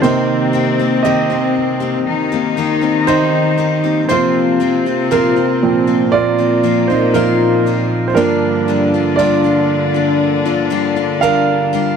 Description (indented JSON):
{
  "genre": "pop ballad",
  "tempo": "59 BPM",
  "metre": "4/4",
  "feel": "straight",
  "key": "Bb major",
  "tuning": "A4 = 439 Hz",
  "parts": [
    { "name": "warm studio cello section", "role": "second line", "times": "0.0-12.0 s", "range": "Bb2 to Eb4", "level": "-17 LUFS", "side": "left 4 dB", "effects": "none" },
    { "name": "warm concert grand piano", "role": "accompaniment", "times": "0.0-12.0 s", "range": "G2 to F5", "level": "-15 LUFS", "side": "right 6 dB", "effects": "none" },
    { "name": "picked steel-string acoustic guitar", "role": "arpeggios", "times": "0.0-12.0 s", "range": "Bb2 to G4", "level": "-20 LUFS", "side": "left 16 dB", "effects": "none" }
  ],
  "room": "light reverb",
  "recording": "dry, close 1970s-style studio recording",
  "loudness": "-12 LUFS",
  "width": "side -6 dB against mid",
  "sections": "0.0-12.0 A section",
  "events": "grand piano solo 0.0-12.0",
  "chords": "0.0 Cm7; 4.1 Bbsus2; 8.2 Gm7"
}